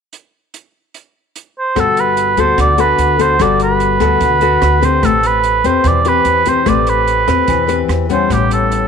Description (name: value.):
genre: bossa nova.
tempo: 147 BPM.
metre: 4/4.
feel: straight.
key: G major.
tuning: A4 = 439 Hz.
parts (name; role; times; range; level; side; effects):
open jazz drum kit; drums; 0.1-8.8 s; hi-hat, kick drum, rim click; -24 LUFS; right 6 dB; none.
mellow oboe; melody; 1.6-8.9 s; G4 to D5; -14 LUFS; right 4 dB; slapback echo.
nylon-string guitar; accompaniment; 1.8-8.9 s; A2 to B4; -16 LUFS; left 12 dB; none.
upright bass; bass; 1.8-8.9 s; G1 to E2; -19 LUFS; right 1 dB; none.
room: light reverb, studio reverb.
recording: 1960s-style stereo with parts hard left and right.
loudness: -11 LUFS.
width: side -6 dB against mid.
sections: 0.1-1.8 A section; 1.8-8.9 B section.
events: none.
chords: 0.1 N.C.; 1.8 Gmaj9; 5.0 Am9; 8.3 A9.